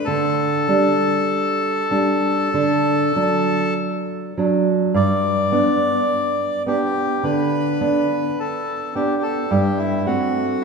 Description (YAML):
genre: romantic duo for bandoneon and classical guitar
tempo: 48-54 BPM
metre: 4/4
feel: rubato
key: G major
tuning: A4 = 439 Hz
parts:
  - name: bandoneon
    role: melody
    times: 0.0-10.6 s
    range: E4 to D5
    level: -22 LUFS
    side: left 1 dB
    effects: none
  - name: nylon-string guitar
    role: accompaniment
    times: 0.0-10.6 s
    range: G2 to D4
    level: -19 LUFS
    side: right 2 dB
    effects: none
room: wet church reverb, RT60 2.6 s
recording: recorded in a church or concert hall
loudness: -17 LUFS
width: side -4 dB against mid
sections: 0.0-10.6 A section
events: none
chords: 0.1 Dsus4; 2.5 D; 4.9 G; 9.5 Am7/G